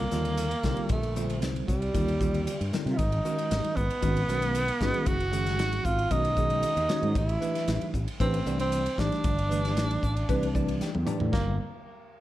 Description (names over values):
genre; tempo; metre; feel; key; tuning
electric jazz fusion; 115 BPM; 4/4; straight; unclear; A4 = 440 Hz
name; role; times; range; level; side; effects
breathy tenor saxophone; melody; 0.0-11.6 s; G3 to Gb4; -30 LUFS; right 2 dB; none
tine electric piano; accompaniment; 0.0-11.6 s; D3 to G5; -32 LUFS; equal; medium stereo tremolo, analog chorus
fretless electric bass; bass; 0.0-11.6 s; Gb1 to C3; -30 LUFS; equal; lush chorus
modern studio drum kit; drums; 0.1-11.5 s; china cymbal, hi-hat, kick drum, ride cymbal, snare drum, toms; -32 LUFS; equal; none
room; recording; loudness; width
moderate large studio reverb, RT60 1.2 s; dark, warm production; -25 LUFS; side -14 dB against mid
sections
0.0-11.3 A section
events
tine electric piano fill 10.5-11.3; drum fill 10.8-11.3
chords
0.0 Cm9; 3.0 Abm9; 7.2 Am9; 11.3 Gm7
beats
0.38 | 0.90 1.42 1.94 2.46 | 2.98 3.51 4.03 4.55 | 5.07 5.59 6.11 6.63 | 7.16 7.68 8.20 8.72 | 9.24 9.77 10.29 10.81 | 11.33